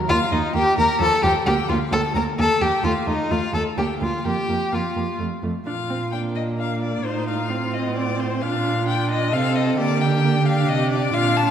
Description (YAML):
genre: quick classical-period movement for string quartet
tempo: 131 BPM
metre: 3/4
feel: straight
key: Bb major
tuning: A4 = 438 Hz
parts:
  - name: rich viola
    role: accompaniment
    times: 0.0-11.5 s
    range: F3 to Eb4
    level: -26 LUFS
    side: right 2 dB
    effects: none
  - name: rich violin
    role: melody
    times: 0.1-11.5 s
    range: C5 to Bb5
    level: -26 LUFS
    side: left 6 dB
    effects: none
  - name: rich violin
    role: second line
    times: 0.1-11.5 s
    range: D4 to Bb4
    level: -24 LUFS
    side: left 1 dB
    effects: none
  - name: rich cello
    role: bass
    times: 0.1-11.5 s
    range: D2 to D3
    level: -24 LUFS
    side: right 3 dB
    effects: none
room: wet scoring stage reverb, RT60 2.0 s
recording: dark, warm production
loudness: -19 LUFS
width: side -9 dB against mid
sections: 0.0-5.7 A section; 5.7-11.5 B section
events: none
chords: 0.1 Ebadd9; 1.0 F7; 1.5 Bb/D; 2.4 Eb; 2.8 F7/Eb; 3.8 Bb; 4.2 Fsus4; 5.2 F; 5.7 Bb; 7.0 F7/A; 8.4 Bb; 9.8 Bb/D